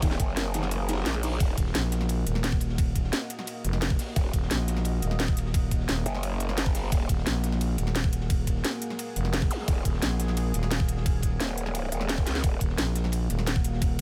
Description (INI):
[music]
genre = dark technical drum and bass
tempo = 174 BPM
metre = 4/4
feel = straight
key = Eb minor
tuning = A4 = 440 Hz
[part]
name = deep dark ambient pad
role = sustained chords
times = 0.1-14.0 s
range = Bb3 to Eb5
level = -40 LUFS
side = equal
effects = chorus, built-in reverb, vintage 12-bit sampler grit, sidechain pumping
[part]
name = felt-muted upright piano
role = arpeggios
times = 0.0-1.3 s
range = Eb3 to Eb4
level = -39 LUFS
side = equal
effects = sidechain pumping, dub echo
[part]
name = growl bass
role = bass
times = 0.0-1.6, 4.2-7.1, 9.7-12.6 s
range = Eb1 to Db2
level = -32 LUFS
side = equal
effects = chorus, overdrive, sidechain pumping
[part]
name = crunchy breakbeat drum kit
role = drums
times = 0.0-14.0 s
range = hi-hat, ride cymbal, snare drum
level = -43 LUFS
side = equal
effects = high-pass filter on cymbals, high-pass filter on hats, high-pass filter on snare, high-pass filter on room
[part]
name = drum and bass drum kit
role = drums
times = 0.0-14.0 s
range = hi-hat, ride cymbal, snare drum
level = -35 LUFS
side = equal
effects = none
[part]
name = electronic kick drum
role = drums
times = 0.0-14.0 s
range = none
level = -28 LUFS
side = equal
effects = none
[part]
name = growling FM bass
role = bass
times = 1.6-14.0 s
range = Eb1 to Bb1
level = -30 LUFS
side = equal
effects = none
[part]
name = zap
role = sound effects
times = 9.5-9.6 s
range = none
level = -42 LUFS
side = equal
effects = none
[sound]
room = studio reverb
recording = none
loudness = -27 LUFS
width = mono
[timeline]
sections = 0.0-1.4 A section; 1.4-14.0 A section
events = drop 0.0-1.4, 1.4-14.0; kick drops out 0.7-1.4; drum fill 12.3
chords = 0.0 Ebm